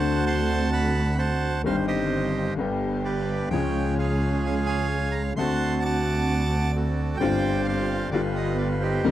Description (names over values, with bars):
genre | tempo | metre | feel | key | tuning
tango | 130 BPM | 4/4 | rubato | unclear | A4 = 440 Hz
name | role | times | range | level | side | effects
bandoneon | melody | 0.0-9.1 s | Eb4 to D6 | -28 LUFS | right 4 dB | none
bright grand piano | accompaniment | 0.0-9.1 s | G1 to Ab4 | -27 LUFS | left 4 dB | none
warm chamber string section | stabs | 0.0-9.1 s | B3 to Ab4 | -32 LUFS | right 3 dB | none
rich double bass | bass | 0.0-9.1 s | G1 to D2 | -27 LUFS | right 1 dB | none
room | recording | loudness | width
light reverb | dry, close 1970s-style studio recording | -22 LUFS | side -12 dB against mid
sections
0.0-9.1 A section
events
none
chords
0.0 D7; 1.7 Cm/G; 2.6 G; 3.5 Db; 5.4 D7; 7.2 G7sus4; 8.1 G7